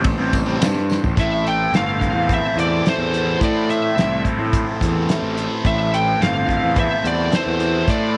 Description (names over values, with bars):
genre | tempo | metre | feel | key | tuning
psychedelic rock | 107 BPM | 4/4 | straight | A minor | A4 = 441 Hz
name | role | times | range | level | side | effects
combo organ | sustained chords | 0.0-8.2 s | E3 to C5 | -32 LUFS | equal | none
fuzz guitar | riff | 0.0-8.2 s | A2 to E4 | -26 LUFS | equal | distortion, phaser
fuzz picked electric bass | bass | 0.0-8.2 s | G1 to A2 | -24 LUFS | equal | overdrive
damped 70s drum kit | drums | 0.0-8.0 s | hi-hat, kick drum, ride cymbal, snare drum, toms | -24 LUFS | equal | none
tambourine | percussion | 0.1-1.1 s | none | -41 LUFS | equal | none
fuzz lead guitar | melody | 1.2-8.1 s | C5 to G5 | -24 LUFS | equal | distortion, slapback echo
room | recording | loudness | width
light reverb, small room ambience | none | -19 LUFS | mono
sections
0.0-1.2 A section; 1.2-8.2 B section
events
drum fill 0.9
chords
0.0 Cadd9/A; 1.2 Am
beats
0.05 0.61 | 1.17 1.73 2.29 2.85 | 3.41 3.97 4.53 5.08 | 5.64 6.20 6.76 7.32 | 7.88